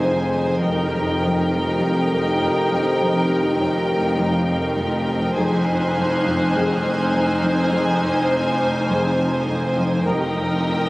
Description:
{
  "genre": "cinematic, suspense film score",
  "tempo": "102 BPM",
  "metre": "4/4",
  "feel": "straight",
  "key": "F minor",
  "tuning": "A4 = 440 Hz",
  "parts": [
    { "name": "dark studio violin section", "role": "melody", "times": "0.0-10.9 s", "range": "G5 to Ab5", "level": "-27 LUFS", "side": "equal", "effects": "none" },
    { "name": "warm studio violin section", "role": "second line", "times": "0.0-10.9 s", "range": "Bb4 to C5", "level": "-25 LUFS", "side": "equal", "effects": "none" },
    { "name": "dark studio viola section", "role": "accompaniment", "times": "0.0-10.9 s", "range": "Eb4", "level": "-26 LUFS", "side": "equal", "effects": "none" },
    { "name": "warm French horn section", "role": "sustained chords", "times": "0.0-10.3 s", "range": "Eb3 to Ab4", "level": "-28 LUFS", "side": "left 1 dB", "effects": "none" },
    { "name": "warm studio cello section", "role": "riff", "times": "0.0-10.8 s", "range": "F2", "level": "-28 LUFS", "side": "equal", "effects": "none" },
    { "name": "dark studio double bass section", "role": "bass", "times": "0.0-10.9 s", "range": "F1", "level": "-25 LUFS", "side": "equal", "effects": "none" },
    { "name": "rich studio cello section", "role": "bass", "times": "0.0-10.9 s", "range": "F2", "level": "-26 LUFS", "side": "equal", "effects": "none" },
    { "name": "overtone-sweeping drone", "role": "drone", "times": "0.0-10.9 s", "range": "F2", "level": "-28 LUFS", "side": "equal", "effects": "none" },
    { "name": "warm concert grand piano", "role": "texture", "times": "0.0-10.1 s", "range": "C5 to Eb5", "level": "-33 LUFS", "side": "equal", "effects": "none" },
    { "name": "warm studio violin section", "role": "texture", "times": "0.0-0.3, 5.4-10.9 s", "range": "Eb6 to C7", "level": "-34 LUFS", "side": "left 1 dB", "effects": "none" }
  ],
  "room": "moderate scoring stage reverb, RT60 2.0 s",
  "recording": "recorded on a phone in the room, club reverb, compression",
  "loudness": "-18 LUFS",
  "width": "side -20 dB against mid",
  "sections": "0.0-10.9 A section",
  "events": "none",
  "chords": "0.0 Fm7; 0.6 Ebadd9/F; 5.4 Fm7; 10.1 Ebadd9/F"
}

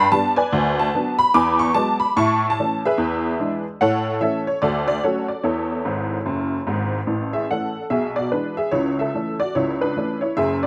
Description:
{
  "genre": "jazz, stride piano",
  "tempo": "146 BPM",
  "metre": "4/4",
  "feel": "swing 63% on 8ths",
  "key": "A major",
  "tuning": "A4 = 441 Hz",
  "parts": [
    { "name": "honky-tonk upright piano", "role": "solo", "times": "0.0-10.7 s", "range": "F#1 to D6", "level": "-21 LUFS", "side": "equal", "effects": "slapback echo" }
  ],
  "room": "little or no reverb",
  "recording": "recorded outdoors, with no room sound",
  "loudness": "-21 LUFS",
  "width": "mono",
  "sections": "0.0-7.1 A section; 7.1-10.7 B section",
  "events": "honky-tonk piano fill 5.8-7.1",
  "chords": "0.0 G; 0.5 Bm/D; 1.3 Eadd9; 2.2 A; 3.0 E7; 3.8 A; 4.6 Dmaj7; 5.4 A/E; 6.3 E; 7.1 A; 7.9 E7/B; 8.7 A/C#"
}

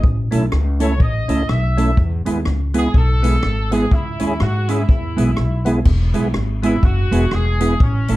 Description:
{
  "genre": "ska",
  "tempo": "124 BPM",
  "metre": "4/4",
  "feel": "swing 59% on 8ths",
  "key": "E major",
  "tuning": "A4 = 442 Hz",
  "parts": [
    { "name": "clear horn section", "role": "melody", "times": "0.0-8.2 s", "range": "C#4 to E5", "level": "-24 LUFS", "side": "equal", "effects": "slapback echo" },
    { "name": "upright bass", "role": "bass", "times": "0.0-8.2 s", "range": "E1 to G#2", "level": "-18 LUFS", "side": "equal", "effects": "none" },
    { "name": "swinging big-band drum kit", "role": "drums", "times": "0.0-8.2 s", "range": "crash cymbal, hi-hat, kick drum, rim click", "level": "-19 LUFS", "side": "equal", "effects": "none" },
    { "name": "mellow electric guitar", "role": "accompaniment", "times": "0.3-8.2 s", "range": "G#3 to A4", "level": "-21 LUFS", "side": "right 4 dB", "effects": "slapback echo" },
    { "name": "percussive tonewheel organ", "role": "stabs", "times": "0.3-8.2 s", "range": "B3 to A4", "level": "-25 LUFS", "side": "left 2 dB", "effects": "overdrive, chorus vibrato, slow rotary speaker" }
  ],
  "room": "light reverb",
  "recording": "dark, warm production",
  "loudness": "-15 LUFS",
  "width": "side -17 dB against mid",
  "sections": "0.0-5.9 A section; 5.9-8.2 A section",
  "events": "none",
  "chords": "0.0 A; 2.0 E; 3.9 C#m; 4.9 E"
}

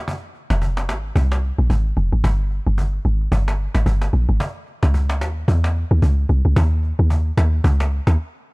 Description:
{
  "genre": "amapiano",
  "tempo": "111 BPM",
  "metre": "4/4",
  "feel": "swing 58% on 16ths",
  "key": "F minor",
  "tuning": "A4 = 440 Hz",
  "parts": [
    { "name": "cajon", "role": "drums", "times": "0.1-8.2 s", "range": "none", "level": "-28 LUFS", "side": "equal", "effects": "none" },
    { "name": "deep log drum bass", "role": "bass", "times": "0.5-8.2 s", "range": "F1 to Fb2", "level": "-16 LUFS", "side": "equal", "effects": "none" }
  ],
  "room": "studio ambience",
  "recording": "none",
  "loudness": "-17 LUFS",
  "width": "side -29 dB against mid",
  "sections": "0.1-8.5 A section",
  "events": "break 8.2-8.5",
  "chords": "none"
}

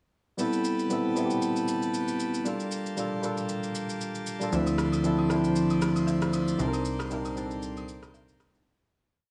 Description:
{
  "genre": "amapiano",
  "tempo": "116 BPM",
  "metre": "4/4",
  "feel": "swing 55% on 16ths",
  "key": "A phrygian",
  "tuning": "A4 = 438 Hz",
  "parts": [
    { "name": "tine electric piano", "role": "accompaniment", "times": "0.4-8.7 s", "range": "F3 to C5", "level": "-30 LUFS", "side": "equal", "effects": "none" },
    { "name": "pipe organ, full organ", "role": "sustained chords", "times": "0.4-8.6 s", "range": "F3 to C6", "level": "-39 LUFS", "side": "equal", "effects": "none" },
    { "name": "electronic shaker and rim click", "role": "drums", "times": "0.4-8.7 s", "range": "none", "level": "-41 LUFS", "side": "equal", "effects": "vintage 12-bit sampler grit" },
    { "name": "plucky analog bass", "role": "bass", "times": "4.5-8.6 s", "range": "C2 to D2", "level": "-34 LUFS", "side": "equal", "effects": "none" },
    { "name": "agogo bells and woodblock", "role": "percussion", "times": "4.7-8.5 s", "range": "none", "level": "-46 LUFS", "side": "equal", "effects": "none" }
  ],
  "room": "wet plate reverb, RT60 1.2 s, small room ambience",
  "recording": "dreamy mix soaked in reverb",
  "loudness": "-28 LUFS",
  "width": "mono",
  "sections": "0.4-8.7 breakdown",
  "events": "fade-out 6.6-8.7",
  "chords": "0.4 Am9; 2.5 Gm9; 4.5 Dm9; 6.6 Cm9"
}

